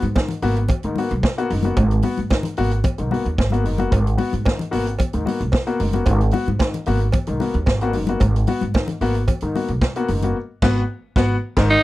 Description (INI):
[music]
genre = disco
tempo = 112 BPM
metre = 4/4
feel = straight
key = G# minor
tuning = A4 = 440 Hz
[part]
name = warm grand piano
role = accompaniment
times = 0.0-11.7 s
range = G#2 to F#4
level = -23 LUFS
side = left 3 dB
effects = none
[part]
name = upright bass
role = bass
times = 0.0-11.8 s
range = F#1 to G#2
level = -21 LUFS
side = right 1 dB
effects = none
[part]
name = vintage drum kit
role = drums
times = 0.0-11.7 s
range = crash cymbal, hi-hat, kick drum, snare drum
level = -22 LUFS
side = right 1 dB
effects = none
[part]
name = congas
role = percussion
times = 0.0-10.3 s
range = none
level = -27 LUFS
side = left 6 dB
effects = none
[part]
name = cowbell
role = percussion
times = 0.2-9.9 s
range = none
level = -30 LUFS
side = right 4 dB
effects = none
[part]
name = raspy alto saxophone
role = melody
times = 11.7-11.8 s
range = D#4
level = -13 LUFS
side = right 1 dB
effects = none
[sound]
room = little or no reverb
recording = dry, close 1970s-style studio recording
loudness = -18 LUFS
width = side -16 dB against mid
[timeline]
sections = 0.0-11.8 A section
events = band accent 10.4-11.8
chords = 0.0 G#m7